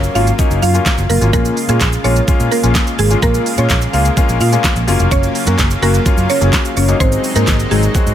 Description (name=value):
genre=dance-pop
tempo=127 BPM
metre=4/4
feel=straight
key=Bb minor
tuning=A4 = 440 Hz
part: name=lush unison pad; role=sustained chords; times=0.0-8.1 s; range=C3 to F4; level=-22 LUFS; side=equal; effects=chorus, sidechain pumping
part: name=vintage muted fingered electric bass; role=bass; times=0.0-8.1 s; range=F1 to Bb2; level=-15 LUFS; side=equal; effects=sidechain pumping
part: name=pop drum kit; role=drums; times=0.0-8.1 s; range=handclaps, hi-hat, kick drum, shaker, snare drum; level=-16 LUFS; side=equal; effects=none
part: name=tube shaker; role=percussion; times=0.0-8.1 s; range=none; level=-33 LUFS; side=right 8 dB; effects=none
part: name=clear baby grand piano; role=accompaniment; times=0.1-8.1 s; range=Gb3 to Ab4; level=-20 LUFS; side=left 5 dB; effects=sidechain pumping
part: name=mallet-like synth pluck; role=melody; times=0.2-7.8 s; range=Ab3 to F5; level=-18 LUFS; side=right 1 dB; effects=chorus, digital delay
room=digital ambience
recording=none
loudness=-11 LUFS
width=side -10 dB against mid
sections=0.0-8.1 A section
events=none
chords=0.0 Gbmaj7; 1.3 Bbm7; 4.9 Gbmaj7; 7.0 Ab7